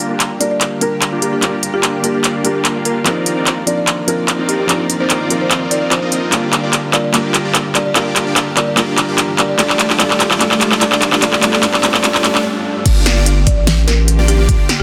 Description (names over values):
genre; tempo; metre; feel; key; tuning
future bass; 147 BPM; 4/4; half-time; G minor; A4 = 440 Hz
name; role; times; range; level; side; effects
felt-muted upright piano; accompaniment; 0.0-12.9 s; F3 to D5; -23 LUFS; equal; sidechain pumping, dub echo
clear symphonic string section; sustained chords; 0.0-14.8 s; D3 to D5; -29 LUFS; equal; sidechain pumping
supersaw chords; riff; 0.0-14.8 s; A3 to F5; -23 LUFS; equal; sidechain pumping, low-pass filter
pop drum kit; drums; 0.0-14.8 s; crash cymbal, handclaps, hi-hat, snare drum; -17 LUFS; equal; studio reverb
folk marimba with medium mallets; melody; 0.4-14.8 s; G4 to D5; -24 LUFS; equal; sidechain pumping, dub echo
riser; sound effects; 9.3-12.4 s; none; -30 LUFS; equal; none
airy dreamy lead; arpeggios; 12.9-14.8 s; D5; -29 LUFS; equal; chorus, phaser, cassette tape, sidechain pumping
saturated sub bass; bass; 12.9-14.8 s; G1 to A1; -15 LUFS; equal; sidechain pumping
electronic kick drum; drums; 12.9-14.6 s; none; -16 LUFS; equal; studio reverb
room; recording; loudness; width
light reverb, digital ambience; dense, heavily limited modern master; -14 LUFS; mono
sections
0.0-12.9 A section; 12.9-14.8 B section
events
build-up 0.0-12.9; drum fill 0.0-12.4; filter sweep on supersaw synth 0.0-12.9; stop 12.4-12.9; drop 12.9-14.8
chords
0.0 Gm7; 3.1 Cm11; 6.3 Gm7; 9.6 F9; 12.9 Gm7